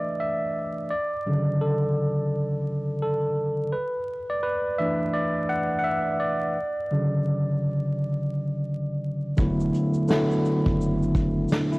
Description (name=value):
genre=lo-fi hip hop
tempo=85 BPM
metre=4/4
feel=swing 62% on 16ths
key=unclear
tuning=A4 = 443 Hz
part: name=tine electric piano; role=accompaniment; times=0.0-11.8 s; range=C#3 to F#5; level=-23 LUFS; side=equal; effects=medium stereo tremolo, low-pass filter, cassette tape
part: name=warm sub bass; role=bass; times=9.4-11.5 s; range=E1 to F#1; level=-30 LUFS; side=equal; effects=none
part: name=vintage brush drum kit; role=drums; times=9.4-11.8 s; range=hi-hat, kick drum, shaker, snare drum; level=-25 LUFS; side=equal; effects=none
room=light reverb, studio ambience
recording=home recording on cassette, vinyl crackle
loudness=-23 LUFS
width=side -24 dB against mid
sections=0.0-9.4 A section; 9.4-11.8 B section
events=tine electric piano solo 0.0-9.4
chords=0.0 E7sus4; 0.9 Dmaj7; 3.7 E7sus4; 6.6 Dmaj7; 9.4 E9sus4